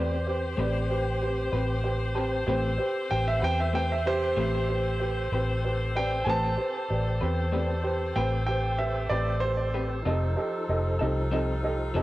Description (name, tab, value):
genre	slow blues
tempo	63 BPM (dotted quarters)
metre	12/8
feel	straight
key	A minor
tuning	A4 = 441 Hz
part	dark upright piano	accompaniment	0.0-12.0 s	G4 to A5	-32 LUFS	right 2 dB	cassette tape
part	electric guitar through a small old amp	accompaniment	0.0-12.0 s	F3 to B4	-34 LUFS	left 4 dB	tremolo, cassette tape
part	edgy saxophone section	sustained chords	0.0-12.0 s	C4 to C5	-36 LUFS	left 2 dB	cassette tape
part	tonewheel organ	sustained chords	0.0-12.0 s	F3 to C5	-37 LUFS	left 1 dB	slow rotary speaker, overdrive, chorus vibrato, cassette tape
part	vintage muted fingered electric bass	bass	0.0-12.0 s	F1 to E2	-29 LUFS	equal	none
part	clear upright piano	second line	3.1-11.3 s	G4 to A5	-31 LUFS	right 2 dB	cassette tape, tape echo
room	light reverb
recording	home recording on cassette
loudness	-25 LUFS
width	side -16 dB against mid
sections	0.0-12.0 A section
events	upright piano solo 0.0-12.0; upright piano fill 1.5-2.5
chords	0.0 Am9; 10.1 F7